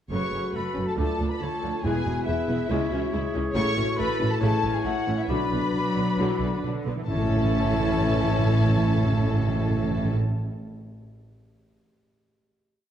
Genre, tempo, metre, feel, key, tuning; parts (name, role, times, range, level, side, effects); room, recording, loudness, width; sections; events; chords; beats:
cinematic, heroic adventure film score; 139 BPM; 4/4; straight; A major; A4 = 440 Hz
rich symphonic violin section; melody; 0.1-10.1 s; E5 to C#6; -34 LUFS; left 3 dB
dark clarinet; second line; 0.1-10.1 s; D4 to G#4; -34 LUFS; left 2 dB
mellow hollow concert flute; second line; 0.1-10.1 s; E5 to C#6; -34 LUFS; left 2 dB
rich symphonic violin section; second line; 0.1-10.1 s; E4 to C#5; -35 LUFS; left 2 dB
warm oboe; second line; 0.1-10.1 s; A4 to D5; -37 LUFS; right 1 dB
rich symphonic viola section; accompaniment; 0.1-10.1 s; C#3 to F#4; -32 LUFS; right 1 dB
dark French horn section; sustained chords; 0.1-10.1 s; E3 to F#4; -31 LUFS; left 4 dB
rich symphonic cello section; bass; 0.1-10.1 s; C#2 to F#3; -30 LUFS; right 2 dB
rich symphonic double bass section; bass; 0.1-10.1 s; E1 to D2; -29 LUFS; right 2 dB
timpani; percussion; 1.8-2.4, 7.1-10.1 s; E2 to A2; -28 LUFS; right 1 dB
moderate scoring stage reverb, RT60 1.8 s; dark, warm production; -22 LUFS; side -10 dB against mid
0.1-7.1 theme; 7.1-10.5 final chord
0.1 F#m; 1.0 Dm; 1.8 E; 2.7 C#m; 3.6 A; 5.3 Bm; 7.1 A
| 0.12 0.55 0.98 1.42 | 1.85 2.27 2.70 3.13 | 3.56 3.99 4.42 4.85 | 5.29 5.74 6.18 6.62 | 7.06 7.50 7.93 8.36 | 8.79 9.22 9.65 10.08